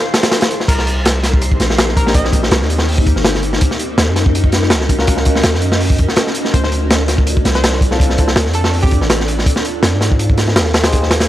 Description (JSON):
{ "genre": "drum and bass, jungle", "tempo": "164 BPM", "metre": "4/4", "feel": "swing 54% on 16ths", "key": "C minor", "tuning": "A4 = 439 Hz", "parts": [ { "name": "backwards swelling texture", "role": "texture", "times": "0.0-0.7 s", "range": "C6", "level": "-33 LUFS", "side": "equal", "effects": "none" }, { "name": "crunchy breakbeat drum kit", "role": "drums", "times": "0.1-11.3 s", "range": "crash cymbal, hi-hat, kick drum, snare drum", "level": "-14 LUFS", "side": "equal", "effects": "none" }, { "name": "hollow square pluck", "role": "melody", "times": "0.7-2.5, 6.5-9.3 s", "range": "G4 to Eb5", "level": "-26 LUFS", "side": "equal", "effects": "chorus, vintage 12-bit sampler grit, dub echo" }, { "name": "long sustained 808-style bass", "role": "bass", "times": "0.7-11.3 s", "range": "G1 to Ab2", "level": "-17 LUFS", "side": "equal", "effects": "none" }, { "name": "warm baby grand piano", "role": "stabs", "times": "2.1-2.4, 5.0-5.4, 7.9-8.3, 10.8-11.1 s", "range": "Bb3 to C5", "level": "-25 LUFS", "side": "left 3 dB", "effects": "none" } ], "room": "studio ambience", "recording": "dry, gritty hardware recording", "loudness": "-12 LUFS", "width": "side -13 dB against mid", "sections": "0.7-11.3 A section", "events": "break 0.0-0.7; drop 0.7-11.3", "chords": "0.0 Fm7; 0.7 Cm7; 3.6 Ebm7; 6.5 Dm7; 9.5 Fm7", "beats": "0.32 | 0.68 1.05 1.42 1.78 | 2.15 2.51 2.88 3.25 | 3.61 3.98 4.34 4.71 | 5.07 5.44 5.81 6.17 | 6.54 6.90 7.27 7.63 | 8.00 8.37 8.73 9.10 | 9.46 9.83 10.20 10.56 | 10.93" }